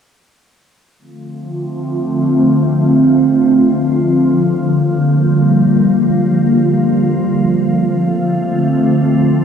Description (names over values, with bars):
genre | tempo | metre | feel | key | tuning
hip hop | free time | none | none | D minor | A4 = 440 Hz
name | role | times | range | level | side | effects
glassy FM pad | solo | 1.3-9.4 s | D3 to F4 | -11 LUFS | equal | ensemble chorus, built-in reverb, phaser, low-pass filter, ping-pong delay
room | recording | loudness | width
wet plate reverb, RT60 2.6 s | dreamy mix soaked in reverb | -11 LUFS | side -7 dB against mid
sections
1.0-9.4 A section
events
filter sweep on ambient pad 1.0-9.4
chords
1.0 Dm7; 4.3 Gm7; 7.6 Dm7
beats
free time